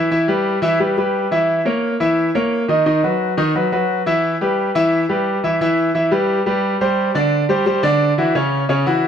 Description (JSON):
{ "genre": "latin", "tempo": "175 BPM", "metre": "4/4", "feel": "straight", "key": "E harmonic minor, E minor from 5.6 s", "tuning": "A4 = 439 Hz", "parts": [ { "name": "bright concert grand piano", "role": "solo", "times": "0.0-9.1 s", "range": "C#3 to E5", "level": "-15 LUFS", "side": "equal", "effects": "tape echo" } ], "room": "moderate studio reverb, RT60 0.7 s", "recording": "none", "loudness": "-15 LUFS", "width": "side -8 dB against mid", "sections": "0.0-5.6 A section; 5.6-9.1 B section", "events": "none", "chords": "0.1 Em; 1.5 C#m69; 2.9 B; 4.2 Em; 7.0 Csus2; 8.3 F#5", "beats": "| 0.11 0.46 0.80 1.14 | 1.49 1.83 2.17 2.52 | 2.86 3.20 3.54 3.89 | 4.23 4.57 4.92 5.26 | 5.60 5.95 6.29 6.63 | 6.97 7.32 7.66 8.00 | 8.35 8.69 9.03" }